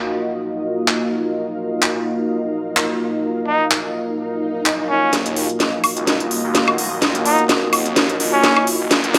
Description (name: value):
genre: bass house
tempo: 127 BPM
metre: 4/4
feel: swing 55% on 16ths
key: Eb minor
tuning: A4 = 440 Hz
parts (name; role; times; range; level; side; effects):
- sweeping resonant pad; sustained chords; 0.0-9.2 s; Bb3 to F5; -25 LUFS; equal; chorus
- ethereal airy pad; texture; 0.0-9.2 s; Eb4 to F5; -29 LUFS; equal; ensemble chorus, built-in reverb
- garage drum kit; drums; 0.9-9.2 s; handclaps, hi-hat, snare drum, woodblock; -20 LUFS; equal; low-pass filter on hats, low-pass filter on snare, low-pass filter on perc, low-pass filter on room
- trumpet with straight mute; melody; 3.5-8.7 s; Db4 to Eb4; -22 LUFS; equal; tape echo
- swell and riser; sound effects; 4.4-9.2 s; none; -31 LUFS; equal; none
- phased detuned saw bass; bass; 5.1-9.2 s; Eb1 to Eb2; -28 LUFS; equal; phaser, high-pass filter
room: moderate plate reverb, RT60 2.0 s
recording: high-pass filter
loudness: -19 LUFS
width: mono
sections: 0.0-5.1 A section; 5.1-9.2 B section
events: swell 4.4-5.1; build-up 5.1-9.2; drum fill 5.1-9.2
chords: 0.0 Ebmadd9